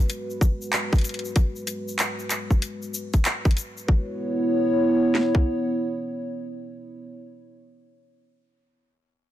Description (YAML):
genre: glitch hop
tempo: 95 BPM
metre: 4/4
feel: swing 63% on 16ths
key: C# minor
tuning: A4 = 440 Hz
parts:
  - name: dark analog pad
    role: sustained chords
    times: 0.0-7.1 s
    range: G#3 to C#5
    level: -26 LUFS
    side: right 1 dB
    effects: chorus, vintage 12-bit sampler grit, sidechain pumping
  - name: drum and bass drum kit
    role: drums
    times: 0.1-3.7 s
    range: handclaps, hi-hat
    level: -26 LUFS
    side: equal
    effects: overdrive
  - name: cabasa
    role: percussion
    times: 0.1-3.9 s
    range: none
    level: -35 LUFS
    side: left 4 dB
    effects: none
  - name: drum and bass drum kit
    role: drums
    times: 0.4-5.5 s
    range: kick drum, snare drum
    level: -20 LUFS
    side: equal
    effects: overdrive
room: light reverb, digital ambience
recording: none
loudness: -22 LUFS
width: side -13 dB against mid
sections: 0.0-3.9 A section; 3.9-6.4 B section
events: filter sweep on analog synth pad 0.0-3.9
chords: 0.0 G#m7; 3.9 C#m7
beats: 0.10 0.73 | 1.36 1.99 2.62 3.25 | 3.88 4.52 5.15 5.78